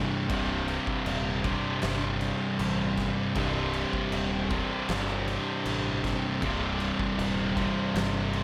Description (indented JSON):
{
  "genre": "stoner and doom metal",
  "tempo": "78 BPM",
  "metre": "4/4",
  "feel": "straight",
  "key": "unclear",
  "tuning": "A4 = 438 Hz",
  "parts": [
    { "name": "cranked stack guitar", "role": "riff", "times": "0.0-8.4 s", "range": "C2 to C3", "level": "-35 LUFS", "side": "equal", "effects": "overdrive" },
    { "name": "thick fuzz guitar", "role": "riff", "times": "0.0-8.4 s", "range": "C2 to C3", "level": "-34 LUFS", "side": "equal", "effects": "distortion" },
    { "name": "thick fuzz guitar", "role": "riff", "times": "0.0-8.4 s", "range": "C2 to C3", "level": "-37 LUFS", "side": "equal", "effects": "distortion" },
    { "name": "growling picked electric bass", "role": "bass", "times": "0.3-8.4 s", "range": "C1 to A1", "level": "-37 LUFS", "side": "equal", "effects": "overdrive" },
    { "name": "oversized low-tuned drum kit", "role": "drums", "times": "0.3-8.4 s", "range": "crash cymbal, kick drum, snare drum", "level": "-37 LUFS", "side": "equal", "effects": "none" }
  ],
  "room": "light reverb",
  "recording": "none",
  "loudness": "-29 LUFS",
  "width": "mono",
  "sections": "0.0-8.4 A section",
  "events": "none",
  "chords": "0.0 Cm"
}